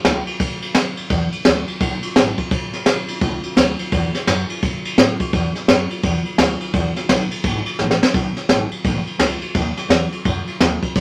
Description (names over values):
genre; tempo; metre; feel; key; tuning
rockabilly; 170 BPM; 4/4; swing 63% on 8ths; E mixolydian; A4 = 440 Hz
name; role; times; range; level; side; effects
upright bass; bass; 0.0-11.0 s; G#1 to A2; -26 LUFS; equal; none
jazz brush drum kit; drums; 0.0-11.0 s; kick drum, ride cymbal, snare drum; -20 LUFS; equal; none
room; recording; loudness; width
moderate studio reverb, RT60 0.5 s; vinyl crackle; -19 LUFS; mono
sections
0.0-11.0 A section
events
drum fill 7.8-8.1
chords
none